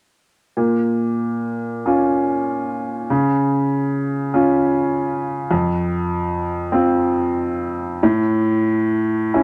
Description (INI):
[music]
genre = neoclassical minimalist piano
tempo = 48 BPM (dotted quarters)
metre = 6/8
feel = uneven beats, rubato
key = unclear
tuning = A4 = 441 Hz
[part]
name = clear upright piano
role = solo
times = 0.6-9.4 s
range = F2 to F4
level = -20 LUFS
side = equal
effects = none
[sound]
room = wet small room reverb, RT60 0.5 s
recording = none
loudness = -20 LUFS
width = mono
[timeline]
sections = 0.6-9.4 A section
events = none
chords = 0.6 Bbm; 3.1 Db; 5.5 F5; 8.0 N.C.